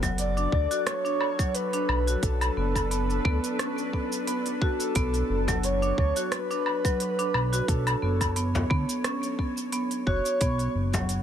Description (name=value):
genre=organic downtempo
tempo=88 BPM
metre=4/4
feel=swing 55% on 16ths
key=B minor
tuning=A4 = 441 Hz
part: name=bowed-like drone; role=sustained chords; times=0.0-11.2 s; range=F#3 to C#5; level=-36 LUFS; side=left 1 dB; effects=built-in reverb, sidechain pumping
part: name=marimba with medium hard mallets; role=arpeggios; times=0.0-11.2 s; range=F#3 to F#4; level=-31 LUFS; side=right 1 dB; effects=ping-pong delay
part: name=smooth synth bass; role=bass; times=0.0-11.2 s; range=F#1 to D2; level=-28 LUFS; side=equal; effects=tube saturation, sidechain pumping
part: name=electronic kick drum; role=drums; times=0.0-11.1 s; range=none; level=-28 LUFS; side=equal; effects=none
part: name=organic electronic drum kit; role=drums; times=0.0-11.2 s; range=hi-hat, rim click, shaker, woodblock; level=-32 LUFS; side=equal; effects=none
part: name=frame drum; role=percussion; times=0.0-0.2, 5.5-11.1 s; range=none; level=-33 LUFS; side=left 3 dB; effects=none
part: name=breathy flute-like synth lead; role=melody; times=0.2-10.7 s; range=A4 to D5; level=-30 LUFS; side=equal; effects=tremolo, lush chorus, ping-pong delay
room=light reverb, digital ambience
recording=none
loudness=-24 LUFS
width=side -9 dB against mid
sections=0.0-11.2 A section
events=none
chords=0.0 Bm7; 10.4 E5